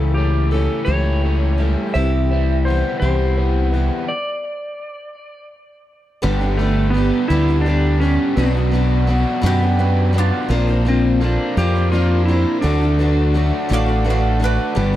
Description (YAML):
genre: rock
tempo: 56 BPM (dotted quarters)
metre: 6/8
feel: straight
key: D major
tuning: A4 = 442 Hz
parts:
  - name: clean lap steel guitar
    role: melody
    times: 0.0-14.4 s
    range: A3 to E5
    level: -23 LUFS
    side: equal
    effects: tape echo
  - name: dark upright piano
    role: accompaniment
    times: 0.0-15.0 s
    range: F#3 to C6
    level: -30 LUFS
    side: right 2 dB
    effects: none
  - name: picked steel-string acoustic guitar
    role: accompaniment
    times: 0.0-15.0 s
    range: G2 to C5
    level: -25 LUFS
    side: left 4 dB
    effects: none
  - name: pedal harmonium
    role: sustained chords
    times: 0.0-15.0 s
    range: D3 to B4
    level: -32 LUFS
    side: right 2 dB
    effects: none
  - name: overdriven electric guitar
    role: riff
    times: 0.0-15.0 s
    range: G2 to G4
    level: -24 LUFS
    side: equal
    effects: none
  - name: fingered electric bass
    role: bass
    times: 0.0-15.0 s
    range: G1 to F#2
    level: -17 LUFS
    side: equal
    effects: none
  - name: bowl-back mandolin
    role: second line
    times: 9.5-10.5, 13.7-15.0 s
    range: D4 to F5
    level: -26 LUFS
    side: right 4 dB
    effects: none
room: light reverb, small room ambience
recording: dark, warm production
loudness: -15 LUFS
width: side -13 dB against mid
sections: 0.0-6.2 A section; 6.2-15.0 B section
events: stop 4.1-6.2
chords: 0.0 A7/C#; 1.9 Cmaj7; 4.1 N.C.; 6.2 G; 8.4 Bm; 10.5 Bbadd9; 12.6 D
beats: 0.88 | 1.95 3.02 | 4.09 5.16 | 6.23 7.30 | 8.37 9.44 | 10.51 11.57 | 12.64 13.71 | 14.78